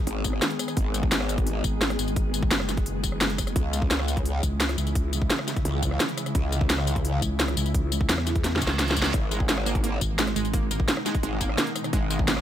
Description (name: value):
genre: dark technical drum and bass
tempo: 172 BPM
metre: 4/4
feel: straight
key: G# minor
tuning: A4 = 442 Hz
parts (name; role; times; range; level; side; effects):
- swarming drone; sustained chords; 0.0-12.4 s; B2 to G#4; -31 LUFS; left 1 dB; built-in reverb, sidechain pumping
- growl bass; bass; 0.1-12.4 s; G#1 to C#2; -27 LUFS; equal; chorus, tube saturation, sidechain pumping
- drum and bass drum kit; drums; 0.1-12.4 s; hi-hat, rim click, snare drum, tambourine; -26 LUFS; equal; studio reverb
- electronic kick drum; drums; 0.2-12.3 s; none; -27 LUFS; equal; studio reverb
- vowel-sweep wobble bass; bass; 1.6-10.9 s; F#1 to E2; -28 LUFS; equal; chorus
- reverse cymbal; sound effects; 8.6-9.1 s; none; -34 LUFS; right 5 dB; none
- analog pluck; arpeggios; 9.3-12.4 s; G#3 to A#3; -32 LUFS; right 7 dB; chorus, sidechain pumping, tape echo
room: little or no reverb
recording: none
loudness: -23 LUFS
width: side -11 dB against mid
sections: 0.0-12.4 A section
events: drum fill 8.4-9.1; reverse cymbal 8.6-9.1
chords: 0.0 G#m; 3.6 C#m; 9.1 G#m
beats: 0.07 0.42 | 0.77 1.12 1.47 1.81 | 2.16 2.51 2.86 3.21 | 3.56 3.91 4.26 4.61 | 4.95 5.30 5.65 6.00 | 6.35 6.70 7.05 7.40 | 7.75 8.09 8.44 8.79 | 9.14 9.49 9.84 10.19 | 10.54 10.88 11.23 11.58 | 11.93 12.28